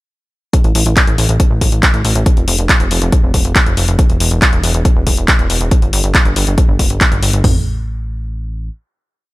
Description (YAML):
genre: uplifting trance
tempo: 139 BPM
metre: 4/4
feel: straight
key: unclear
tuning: A4 = 440 Hz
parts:
  - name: punchy analog drum machine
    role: drums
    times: 0.5-7.5 s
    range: hi-hat, kick drum, toms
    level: -12 LUFS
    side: equal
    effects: none
  - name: punchy analog drum machine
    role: drums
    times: 0.5-7.4 s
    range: handclaps, hi-hat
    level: -16 LUFS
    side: left 1 dB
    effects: none
  - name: plucky analog bass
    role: bass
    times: 0.6-8.7 s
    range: E1 to A1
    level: -16 LUFS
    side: equal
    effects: sidechain pumping
room: little or no reverb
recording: none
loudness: -10 LUFS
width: side -19 dB against mid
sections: 0.5-7.4 drop; 7.4-9.3 final chord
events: drop 0.5-7.4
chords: none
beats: | 0.54 0.97 1.40 1.83 | 2.26 2.69 3.12 3.56 | 3.99 4.42 4.85 5.28 | 5.71 6.15 6.58 7.01 | 7.44 7.87 8.30